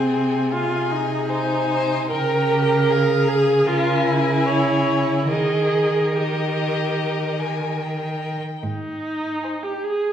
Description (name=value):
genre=classical, slow romantic movement for string quartet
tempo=70-78 BPM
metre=4/4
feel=rubato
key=Ab major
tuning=A4 = 440 Hz
part: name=warm violin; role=melody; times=0.0-10.0 s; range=Eb5 to Ab5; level=-28 LUFS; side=left 6 dB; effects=none
part: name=rich violin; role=second line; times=0.0-10.0 s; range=G4 to Db5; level=-26 LUFS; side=left 4 dB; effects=none
part: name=rich viola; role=accompaniment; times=0.0-10.1 s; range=C4 to Bb4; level=-22 LUFS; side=right 2 dB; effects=none
part: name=rich cello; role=bass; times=0.0-9.3 s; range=Ab2 to Eb3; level=-24 LUFS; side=right 2 dB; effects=none
room=wet recital hall reverb, RT60 1.4 s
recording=heard from further back in the room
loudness=-19 LUFS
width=side -9 dB against mid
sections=0.0-10.1 A section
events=none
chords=0.0 Ab/C; 2.1 Bbm7/Db; 3.7 Bbm7b5/Db; 5.3 Eb; 8.6 Ab